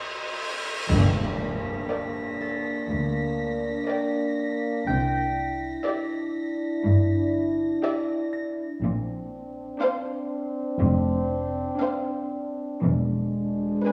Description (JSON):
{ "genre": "cinematic", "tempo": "60 BPM", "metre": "4/4", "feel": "straight", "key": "G dorian", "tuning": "A4 = 436 Hz", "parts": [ { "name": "cymbal swell, impact and reverse cymbal", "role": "sound effects", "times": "0.0-4.9, 13.3-13.9 s", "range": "none", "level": "-33 LUFS", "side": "equal", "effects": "none" }, { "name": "warm chamber violin section", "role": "texture", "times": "0.0-8.3 s", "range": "C6 to B6", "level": "-40 LUFS", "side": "equal", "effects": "none" }, { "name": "mellow French horn section", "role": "sustained chords", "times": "0.9-13.9 s", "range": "G#3 to E4", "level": "-30 LUFS", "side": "equal", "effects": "none" }, { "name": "warm symphonic cello section", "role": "bass", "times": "0.9-13.7 s", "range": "D2 to C3", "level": "-33 LUFS", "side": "equal", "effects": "none" }, { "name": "warm symphonic double bass section", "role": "bass", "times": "0.9-13.7 s", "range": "E1 to D2", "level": "-29 LUFS", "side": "equal", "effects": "none" }, { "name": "warm symphonic violin section", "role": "melody", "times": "1.9-13.9 s", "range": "E5 to G#5", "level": "-39 LUFS", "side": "equal", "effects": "none" }, { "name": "dark studio violin section", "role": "second line", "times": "1.9-13.9 s", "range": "B4 to D5", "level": "-32 LUFS", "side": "equal", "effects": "none" }, { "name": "dark symphonic viola section", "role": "accompaniment", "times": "1.9-13.9 s", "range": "D4 to Bb4", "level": "-38 LUFS", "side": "equal", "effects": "none" }, { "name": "concert harp", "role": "texture", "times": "2.4-12.2 s", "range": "A4 to Bb6", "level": "-35 LUFS", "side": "equal", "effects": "none" } ], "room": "wet scoring stage reverb, RT60 1.5 s", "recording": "studio reverb", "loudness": "-26 LUFS", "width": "mono", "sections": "0.9-13.9 A section", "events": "break 0.0-0.9; cymbal swell 0.0-0.9; band accent 0.9-1.9; impact 0.9-4.9; reverse cymbal 13.3-13.9", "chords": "0.0 C; 0.9 Gm; 4.9 Cadd9; 8.8 Bbadd9; 12.8 E7" }